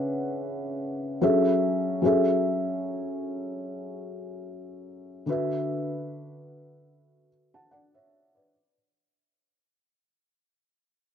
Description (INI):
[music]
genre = R&B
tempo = 74 BPM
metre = 4/4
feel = swing 58% on 16ths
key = F# minor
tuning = A4 = 439 Hz
[part]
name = felt-muted upright piano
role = solo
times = 0.0-8.7 s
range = C#3 to A5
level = -26 LUFS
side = left 1 dB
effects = none
[sound]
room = light reverb, studio ambience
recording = dark, warm production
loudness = -25 LUFS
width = side -8 dB against mid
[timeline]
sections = 0.0-2.0 A section; 2.0-8.5 B section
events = fade-out 2.0-8.5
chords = 0.0 C#m7; 1.2 F#m7; 5.3 D6